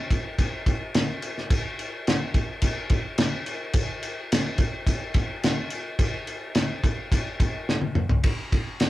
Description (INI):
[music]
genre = rock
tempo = 107 BPM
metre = 4/4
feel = straight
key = none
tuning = none
[part]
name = cloth-damped thuddy drum kit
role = drums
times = 0.1-8.9 s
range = crash cymbal, kick drum, ride cymbal, snare drum, toms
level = -23 LUFS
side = equal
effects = none
[sound]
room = moderate small room reverb, RT60 0.5 s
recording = rough rehearsal-room recording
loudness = -23 LUFS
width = side -16 dB against mid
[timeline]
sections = 0.0-8.3 A section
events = drum fill 7.7-8.3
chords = none